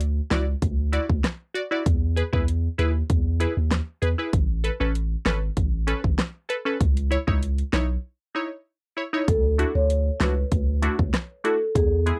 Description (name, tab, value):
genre	dancehall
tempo	97 BPM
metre	4/4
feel	straight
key	unclear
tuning	A4 = 440 Hz
part	punchy sub bass	bass	0.0-12.1 s	G#1 to E2	-26 LUFS	equal	none
part	pop drum kit	drums	0.0-12.2 s	hi-hat, kick drum, rim click, snare drum	-26 LUFS	equal	none
part	wavetable chord stab	accompaniment	0.3-12.2 s	G#3 to D5	-29 LUFS	equal	none
part	marimba with soft mallets	melody	9.3-11.9 s	G#4 to C#5	-28 LUFS	equal	none
room	little or no reverb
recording	dry, gritty hardware recording, cassette tape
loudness	-24 LUFS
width	mono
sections	0.0-9.3 A section; 9.3-12.2 B section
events	break 8.0-9.3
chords	0.0 Dadd9; 1.9 E; 4.3 Aadd9; 6.8 C#madd9; 9.3 Dadd9